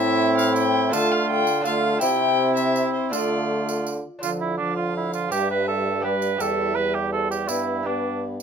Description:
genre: classical, renaissance-style consort dance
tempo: 165 BPM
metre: 3/4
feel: straight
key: D dorian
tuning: A4 = 440 Hz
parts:
  - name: warm violin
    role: melody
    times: 0.0-8.4 s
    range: B4 to A5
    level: -28 LUFS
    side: left 9 dB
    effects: none
  - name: warm cor anglais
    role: second line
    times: 0.0-8.2 s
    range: D4 to B4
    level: -25 LUFS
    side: right 6 dB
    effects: none
  - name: lute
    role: accompaniment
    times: 0.0-8.4 s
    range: E2 to C5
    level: -30 LUFS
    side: equal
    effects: none
  - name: warm trombone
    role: accompaniment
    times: 0.0-8.4 s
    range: F3 to C4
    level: -28 LUFS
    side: left 3 dB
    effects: none
  - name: mellow bassoon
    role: bass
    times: 0.0-8.4 s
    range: E2 to D3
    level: -26 LUFS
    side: right 2 dB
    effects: none
  - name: tambourine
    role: percussion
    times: 0.4-8.4 s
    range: none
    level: -35 LUFS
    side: right 5 dB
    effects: none
room: little or no reverb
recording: close, detailed microphones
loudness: -20 LUFS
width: side -7 dB against mid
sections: 0.0-4.2 A section; 4.2-8.4 B section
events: none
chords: 0.0 Am; 0.9 Dm; 2.0 C; 3.1 Dm; 5.3 G; 6.4 Em; 7.5 G

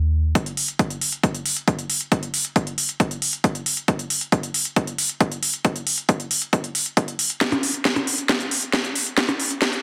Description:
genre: uplifting trance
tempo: 136 BPM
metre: 4/4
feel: straight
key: none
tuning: none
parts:
  - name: electronic kick drum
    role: drums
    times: 0.4-9.7 s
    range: none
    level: -24 LUFS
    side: equal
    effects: high-pass filter on kick, high-pass filter on room
  - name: techno drum kit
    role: drums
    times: 0.4-9.8 s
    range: hi-hat, percussion blips, snare drum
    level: -24 LUFS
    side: equal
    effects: sidechain pumping on hats, sidechain pumping on perc
room: moderate digital room reverb, RT60 1.0 s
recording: dense, heavily limited modern master, high-pass filter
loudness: -22 LUFS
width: mono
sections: 0.4-9.8 A section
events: build-up 0.4-9.8; drum fill 7.4-9.8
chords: none

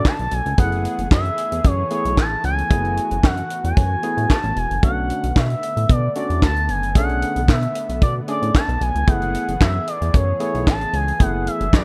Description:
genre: early-eighties boogie funk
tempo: 113 BPM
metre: 4/4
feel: straight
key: B dorian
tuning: A4 = 440 Hz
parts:
  - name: expressive synth lead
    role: melody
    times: 0.0-11.8 s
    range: C#5 to A5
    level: -26 LUFS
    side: equal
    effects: chorus
  - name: barky tine electric piano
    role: accompaniment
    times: 0.0-11.6 s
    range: A3 to G#4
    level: -29 LUFS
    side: equal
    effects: none
  - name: brassy analog pad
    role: sustained chords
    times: 0.0-11.8 s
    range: D3 to A4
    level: -34 LUFS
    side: equal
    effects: chorus
  - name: tight funk drum kit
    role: drums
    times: 0.1-11.8 s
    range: handclaps, hi-hat, kick drum, snare drum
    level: -19 LUFS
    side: equal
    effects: none
  - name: chorused synth bass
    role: bass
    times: 0.2-11.8 s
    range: E1 to B2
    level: -25 LUFS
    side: equal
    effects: none
room: small room reverb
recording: dark, warm production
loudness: -20 LUFS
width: mono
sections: 0.0-11.8 A section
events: none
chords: 0.0 Bm7; 0.6 F#m11; 4.8 Bm7; 9.1 F#m11

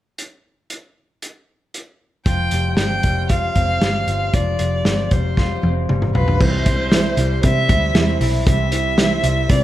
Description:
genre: jangly indie pop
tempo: 116 BPM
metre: 4/4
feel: straight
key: unclear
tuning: A4 = 439 Hz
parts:
  - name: vintage drum kit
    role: drums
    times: 0.2-9.6 s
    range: crash cymbal, hi-hat, kick drum, snare drum, toms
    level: -19 LUFS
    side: equal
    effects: none
  - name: warm violin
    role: melody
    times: 2.3-9.6 s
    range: B4 to G5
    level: -22 LUFS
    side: right 1 dB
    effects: slapback echo
  - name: electric guitar through a small old amp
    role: arpeggios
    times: 2.3-9.6 s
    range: C3 to F4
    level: -26 LUFS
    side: left 3 dB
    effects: slapback echo
  - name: vintage muted picked electric bass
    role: bass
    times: 2.3-9.6 s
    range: F1 to C3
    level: -21 LUFS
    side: equal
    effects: none
  - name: fingerpicked steel-string acoustic guitar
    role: accompaniment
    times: 6.4-9.6 s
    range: C3 to C5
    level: -23 LUFS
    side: right 4 dB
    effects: none
room: light reverb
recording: none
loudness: -15 LUFS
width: side -14 dB against mid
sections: 0.2-2.3 A section; 2.3-6.4 B section; 6.4-9.6 C section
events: drum fill 5.4-6.4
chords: 0.2 N.C.; 2.3 Fsus2; 6.4 C

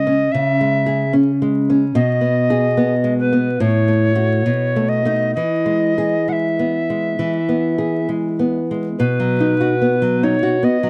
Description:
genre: romantic duo for recorder and classical guitar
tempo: 64-75 BPM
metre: 4/4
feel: rubato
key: E major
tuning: A4 = 440 Hz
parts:
  - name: alto recorder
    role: melody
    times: 0.0-10.9 s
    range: B4 to F#5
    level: -22 LUFS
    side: equal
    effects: none
  - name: nylon-string guitar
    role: accompaniment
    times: 0.0-10.9 s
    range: A2 to G#4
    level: -19 LUFS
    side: equal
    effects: none
room: small room ambience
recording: dry, close 1970s-style studio recording, vinyl crackle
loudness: -18 LUFS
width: mono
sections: 0.0-9.0 A section; 9.0-10.9 B section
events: none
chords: 0.0 C#m; 2.0 G#m/B; 3.6 F#m/A; 4.5 B9; 5.4 E; 9.0 B

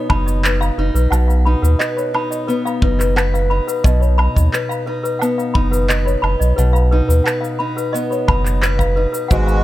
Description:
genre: folktronica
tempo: 88 BPM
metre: 4/4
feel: straight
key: B lydian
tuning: A4 = 438 Hz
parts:
  - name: toy piano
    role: second line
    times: 0.0-9.6 s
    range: B4 to B5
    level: -22 LUFS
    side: left 2 dB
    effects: digital delay
  - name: picked acoustic archtop guitar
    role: arpeggios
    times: 0.0-9.6 s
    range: G#2 to B4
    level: -22 LUFS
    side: equal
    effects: digital delay
  - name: warm sub bass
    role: bass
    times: 0.1-9.6 s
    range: F#1 to D#2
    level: -15 LUFS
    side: equal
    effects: none
  - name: electronic woodblock, cabasa and handclaps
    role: drums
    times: 0.1-9.6 s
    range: none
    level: -23 LUFS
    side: right 1 dB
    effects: none
  - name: kick drum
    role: drums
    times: 0.1-9.4 s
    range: none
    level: -18 LUFS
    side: equal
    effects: none
  - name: accordion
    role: sustained chords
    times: 9.3-9.6 s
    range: B2 to F#4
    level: -20 LUFS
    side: equal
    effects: vintage 12-bit sampler grit
room: small room ambience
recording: none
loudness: -14 LUFS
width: side -15 dB against mid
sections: 0.0-9.6 A section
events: none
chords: 0.0 B

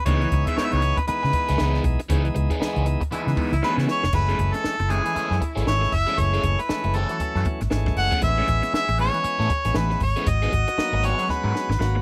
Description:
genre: funk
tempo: 117 BPM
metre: 4/4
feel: swing 60% on 16ths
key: unclear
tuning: A4 = 440 Hz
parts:
  - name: mellow harmonica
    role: melody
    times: 0.0-12.0 s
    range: G#4 to F#5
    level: -26 LUFS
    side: equal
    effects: none
  - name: crunchy overdriven guitar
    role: accompaniment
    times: 0.1-12.0 s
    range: E3 to A#4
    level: -32 LUFS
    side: equal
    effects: phaser
  - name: bright tonewheel organ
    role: stabs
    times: 0.1-12.0 s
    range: D#3 to F#4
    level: -33 LUFS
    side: equal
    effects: overdrive, stopped rotary speaker, analog delay
  - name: vintage muted fingered electric bass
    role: bass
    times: 0.1-12.0 s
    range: E#1 to C#3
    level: -26 LUFS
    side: equal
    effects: none
  - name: compact cocktail drum kit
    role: drums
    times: 0.1-12.0 s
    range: crash cymbal, hi-hat, kick drum, snare drum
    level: -30 LUFS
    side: equal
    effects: none
  - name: warm baritone saxophone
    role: second line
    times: 3.1-12.0 s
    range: E4 to G#4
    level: -39 LUFS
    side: equal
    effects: none
room: little or no reverb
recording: rough home demo mix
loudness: -23 LUFS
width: mono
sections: 0.0-4.1 A section; 4.1-12.0 B section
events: band accent 2.1-4.1; drum fill 3.6-4.1, 11.3-12.0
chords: 0.0 C#m9; 4.1 F#m9; 8.2 Amaj7; 10.3 G#m7

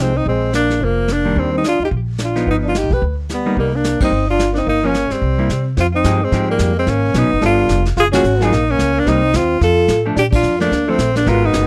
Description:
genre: jazz, small-group swing and bop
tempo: 218 BPM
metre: 4/4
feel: swing 59% on 8ths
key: C minor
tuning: A4 = 440 Hz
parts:
  - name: breathy tenor saxophone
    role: melody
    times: 0.0-11.7 s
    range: Bb3 to B4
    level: -20 LUFS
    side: equal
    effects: slapback echo
  - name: breathy trombone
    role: second line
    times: 0.0-11.7 s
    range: F3 to G4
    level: -24 LUFS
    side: equal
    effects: none
  - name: hollow-body jazz guitar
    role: accompaniment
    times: 0.0-11.7 s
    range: Eb3 to Bb4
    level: -22 LUFS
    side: equal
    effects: none
  - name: upright bass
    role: bass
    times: 0.0-11.7 s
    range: F1 to C3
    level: -21 LUFS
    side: equal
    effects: none
  - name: vintage brush drum kit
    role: drums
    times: 0.3-11.7 s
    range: brushed snare drum, crash cymbal, hi-hat, kick drum, ride cymbal, snare drum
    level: -25 LUFS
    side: equal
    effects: none
room: light reverb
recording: dry, close 1970s-style studio recording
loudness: -16 LUFS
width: mono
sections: 0.0-5.8 A section; 5.8-11.7 B section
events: band accent 4.0, 8.1, 10.3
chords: 0.3 Bb7; 1.4 Ebmaj7; 2.5 G7b13; 3.6 Cm7; 4.7 Gm7b5; 5.2 C7; 5.8 Fm9; 6.9 Abm11; 7.4 G9; 8.0 Gbmaj9; 9.1 Cm7; 9.6 F6; 10.2 Bbmaj7

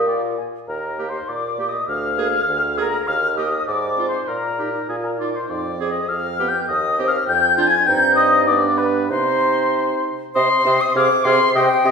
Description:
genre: quick classical-period movement for wind quintet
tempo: 100 BPM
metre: 2/4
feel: straight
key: Eb major, C minor from 5.5 s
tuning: A4 = 440 Hz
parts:
  - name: concert flute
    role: melody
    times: 0.0-11.9 s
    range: G5 to Ab6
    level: -20 LUFS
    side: left 3 dB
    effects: none
  - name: warm oboe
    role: second line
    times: 0.0-11.9 s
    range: Ab4 to Ab5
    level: -22 LUFS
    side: left 2 dB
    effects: none
  - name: bright clarinet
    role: accompaniment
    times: 0.0-11.9 s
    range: D4 to C5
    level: -27 LUFS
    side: right 4 dB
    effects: none
  - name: mellow French horn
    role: accompaniment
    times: 0.0-11.9 s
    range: Bb3 to F4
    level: -25 LUFS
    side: right 1 dB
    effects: none
  - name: warm bassoon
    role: bass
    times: 0.0-11.9 s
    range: D2 to C3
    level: -24 LUFS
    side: right 2 dB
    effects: none
room: wet recital hall reverb, RT60 1.3 s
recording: recorded in a church or concert hall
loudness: -16 LUFS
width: side -5 dB against mid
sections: 0.7-10.4 A section; 10.4-11.9 B section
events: none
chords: 0.1 Bb; 0.7 Eb; 1.9 Bb7/D; 3.1 Eb; 3.7 Fm/Ab; 4.3 Eb/Bb; 4.9 Bb5; 5.5 Dm7b5/F; 6.1 G7/F; 6.7 Cm/Eb; 7.3 Fm69; 7.9 Cm/G; 8.5 G; 9.1 Cm; 11.0 Fm/C

